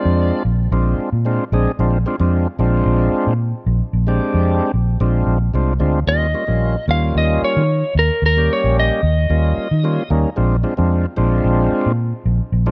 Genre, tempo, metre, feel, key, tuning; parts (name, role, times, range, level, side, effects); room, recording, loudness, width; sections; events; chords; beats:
straight-eighth soul blues; 112 BPM; 4/4; swing 54% on 16ths; Bb mixolydian; A4 = 440 Hz
electric slide guitar; melody; 0.0-0.4, 6.1-10.1 s; Bb4 to F5; -22 LUFS; equal
tonewheel organ; accompaniment; 0.0-12.7 s; G3 to Ab4; -23 LUFS; equal; overdrive, slow rotary speaker
vintage muted fingered electric bass; bass; 0.1-12.7 s; Bb1 to Eb3; -19 LUFS; equal
light reverb, digital ambience; -17 LUFS; mono
0.0-12.7 A section
0.0 Bb9; 6.1 Eb9; 10.4 Bb9
0.18 0.71 1.25 | 1.78 2.32 2.86 3.39 | 3.93 4.47 5.00 5.54 | 6.08 6.62 7.15 7.69 | 8.23 8.77 9.30 9.84 | 10.38 10.91 11.45 11.99 | 12.52